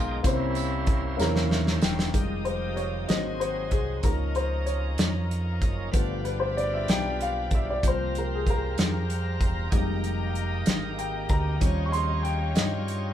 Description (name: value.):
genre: slow gospel.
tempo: 63 BPM (dotted quarters).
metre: 6/8.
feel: straight.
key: F minor.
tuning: A4 = 440 Hz.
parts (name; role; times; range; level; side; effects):
warm horn section; melody; 0.0-1.5 s; G3 to F4; -34 LUFS; right 2 dB; none.
dark upright piano; accompaniment; 0.0-13.1 s; C3 to Db6; -30 LUFS; left 2 dB; none.
bright tonewheel organ; sustained chords; 0.0-13.1 s; Eb3 to G5; -36 LUFS; right 2 dB; slow rotary speaker, overdrive.
fingered electric bass; bass; 0.0-13.1 s; E1 to G2; -30 LUFS; equal; none.
natural country drum kit; drums; 0.2-13.0 s; hi-hat, kick drum, snare drum; -26 LUFS; equal; none.
tambourine; percussion; 0.3-2.1 s; none; -41 LUFS; right 5 dB; none.
warm studio string section; sustained chords; 2.1-13.1 s; C5 to Eb6; -40 LUFS; left 2 dB; none.
room: light reverb.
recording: band playing live in one room.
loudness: -24 LUFS.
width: side -11 dB against mid.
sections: 0.0-2.1 A section; 2.1-13.1 B section.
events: drum fill 1.2-2.1; upright piano fill 1.2-2.1; upright piano solo 2.1-13.1.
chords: 0.2 C7b9; 2.1 Fm9; 3.1 Ab7; 4.0 Db69; 5.9 G7; 7.8 C7sus4; 9.7 Fm11; 11.6 Eb9.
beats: | 0.24 1.19 | 2.14 3.09 | 4.04 4.99 | 5.94 6.89 | 7.83 8.78 | 9.72 10.67 | 11.61 12.56.